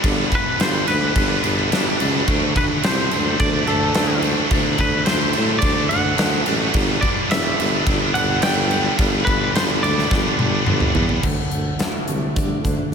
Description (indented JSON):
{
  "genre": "quiet-loud alternative rock",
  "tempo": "107 BPM",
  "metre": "4/4",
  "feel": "straight",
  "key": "D mixolydian",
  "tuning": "A4 = 440 Hz",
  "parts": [
    { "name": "scooped high-gain guitar", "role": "riff", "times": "0.0-11.2 s", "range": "G2 to D4", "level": "-25 LUFS", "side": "left 11 dB", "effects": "distortion, slapback echo" },
    { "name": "scooped high-gain guitar", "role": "riff", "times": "0.0-11.2 s", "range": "G2 to D4", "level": "-25 LUFS", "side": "right 12 dB", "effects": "distortion, slapback echo" },
    { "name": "warm tuba", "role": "bass", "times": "0.0-12.9 s", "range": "E1 to D3", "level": "-23 LUFS", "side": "equal", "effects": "none" },
    { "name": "huge arena drum kit", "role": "drums", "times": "0.0-12.8 s", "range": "crash cymbal, hi-hat, kick drum, snare drum, toms", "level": "-21 LUFS", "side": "equal", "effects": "none" },
    { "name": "twangy electric guitar", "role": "melody", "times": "0.4-10.9 s", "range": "A4 to G5", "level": "-24 LUFS", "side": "equal", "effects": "harmonic tremolo, slapback echo, tape echo" },
    { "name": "picked steel-string acoustic guitar", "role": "arpeggios", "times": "11.2-12.9 s", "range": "D3 to D4", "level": "-25 LUFS", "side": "right 1 dB", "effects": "slapback echo, tape echo" }
  ],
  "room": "moderate lush hall reverb, RT60 2.8 s",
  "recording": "big arena sound",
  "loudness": "-16 LUFS",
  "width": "side -6 dB against mid",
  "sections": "0.0-11.2 A section; 11.2-12.9 B section",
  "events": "drum fill 10.1-11.2",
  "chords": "0.0 G; 2.3 D; 6.8 G; 11.2 D5",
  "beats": "| 0.03 0.59 1.15 1.71 | 2.27 2.83 3.39 3.95 | 4.51 5.07 5.63 6.19 | 6.75 7.31 7.87 8.43 | 8.99 9.55 10.11 10.67 | 11.23 11.79 12.36 12.92"
}